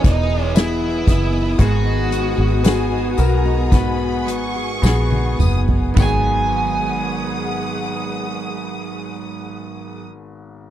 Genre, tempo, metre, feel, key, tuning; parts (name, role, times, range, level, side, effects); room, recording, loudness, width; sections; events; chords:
pop ballad; 52-59 BPM; 4/4; straight; G# minor; A4 = 440 Hz
smooth overdriven lead guitar; melody; 0.0-10.0 s; D#4 to G#5; -23 LUFS; left 1 dB
clear concert grand piano; accompaniment; 0.0-10.7 s; G#1 to B4; -26 LUFS; left 3 dB
warm studio string section; sustained chords; 0.0-10.0 s; G#3 to D#6; -30 LUFS; left 2 dB
picked steel-string acoustic guitar; arpeggios; 0.0-10.1 s; G#2 to G#4; -27 LUFS; right 14 dB
fingered electric bass; bass; 0.0-10.0 s; E1 to B1; -20 LUFS; equal
soft-mallet drum kit; drums; 0.0-6.2 s; hi-hat, kick drum, ride cymbal, snare drum, toms; -17 LUFS; equal
tambourine; percussion; 0.6-6.5 s; -37 LUFS; left 18 dB
clear studio violin section; second line; 2.6-10.0 s; G#5 to D#6; -31 LUFS; right 2 dB
little or no reverb; dry, close 1970s-style studio recording; -16 LUFS; side -12 dB against mid
0.0-6.0 A section; 6.0-10.6 B section
slowing down 0.0-6.0; drum fill 4.8-6.0
0.0 Emaj7; 1.6 G#m7